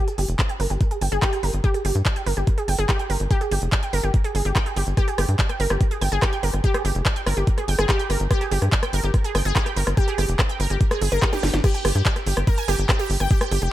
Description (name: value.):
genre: psychedelic trance.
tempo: 144 BPM.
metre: 4/4.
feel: straight.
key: G phrygian.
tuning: A4 = 440 Hz.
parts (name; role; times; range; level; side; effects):
wide unison pluck; riff; 0.0-13.7 s; G4 to Ab5; -26 LUFS; right 2 dB; auto-pan, sidechain pumping, dub echo.
techno drum kit; drums; 0.1-13.7 s; crash cymbal, handclaps, hi-hat, rim click, snare drum; -26 LUFS; equal; none.
tight sequencer bass; bass; 0.2-13.7 s; F1 to G2; -22 LUFS; equal; none.
electronic kick drum; drums; 0.4-13.4 s; none; -20 LUFS; equal; overdrive.
room: digital ambience.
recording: none.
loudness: -19 LUFS.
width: side -14 dB against mid.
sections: 0.0-11.6 A section; 11.6-13.7 B section.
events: filter sweep on synth arpeggio sound 0.0-11.6; drum fill 11.3-11.6; drop 11.6-13.7.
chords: none.